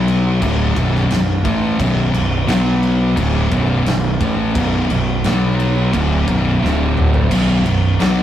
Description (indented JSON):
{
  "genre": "stoner and doom metal",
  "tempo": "87 BPM",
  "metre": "4/4",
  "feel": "straight",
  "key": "B minor",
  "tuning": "A4 = 441 Hz",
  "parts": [
    { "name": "thick fuzz guitar", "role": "riff", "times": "0.0-8.2 s", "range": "B1 to B3", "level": "-17 LUFS", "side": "left 1 dB", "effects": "distortion" },
    { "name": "thick fuzz guitar", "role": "riff", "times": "0.0-8.2 s", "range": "B1 to B3", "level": "-23 LUFS", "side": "right 4 dB", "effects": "distortion" },
    { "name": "fuzz fingered electric bass", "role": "bass", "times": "0.0-8.2 s", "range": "B0 to B1", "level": "-19 LUFS", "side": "equal", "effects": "overdrive" },
    { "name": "oversized low-tuned drum kit", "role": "drums", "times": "0.1-8.2 s", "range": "crash cymbal, kick drum, snare drum, toms", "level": "-21 LUFS", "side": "equal", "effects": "none" }
  ],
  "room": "moderate small room reverb, RT60 0.5 s",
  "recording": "rough rehearsal-room recording, warm saturation",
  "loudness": "-14 LUFS",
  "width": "side -11 dB against mid",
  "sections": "0.0-7.3 A section",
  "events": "drum fill 6.6-7.3",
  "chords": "0.0 Bm; 6.6 D5; 7.3 B5"
}